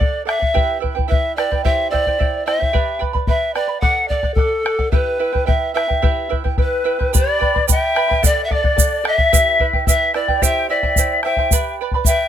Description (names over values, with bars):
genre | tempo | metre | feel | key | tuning
andean folk, Andean ensemble | 109 BPM | 2/4 | straight | E minor | A4 = 440 Hz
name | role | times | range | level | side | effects
breathy bright polished pan flute | melody | 0.0-12.3 s | A4 to F#5 | -19 LUFS | equal | none
charango | accompaniment | 0.0-12.3 s | E4 to B5 | -23 LUFS | right 11 dB | none
bombo | percussion | 0.0-12.2 s | none | -19 LUFS | left 2 dB | none
breathy bright large quena | second line | 6.6-12.3 s | B4 to G5 | -20 LUFS | left 5 dB | none
egg shaker | percussion | 7.1-12.2 s | none | -18 LUFS | right 10 dB | none
room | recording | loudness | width
light reverb | close, detailed microphones | -15 LUFS | side -10 dB against mid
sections
0.0-7.1 A section; 7.1-12.3 A section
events
none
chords
0.0 D; 0.5 Em; 1.6 C; 2.7 G; 3.8 D; 4.9 Em; 7.1 G; 8.2 D; 9.3 Em; 10.4 C; 11.5 G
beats
| 0.54 1.09 | 1.64 2.19 | 2.74 3.29 | 3.84 4.39 | 4.94 5.49 | 6.04 6.59 | 7.14 7.69 | 8.23 8.78 | 9.33 9.88 | 10.43 10.98 | 11.52 12.07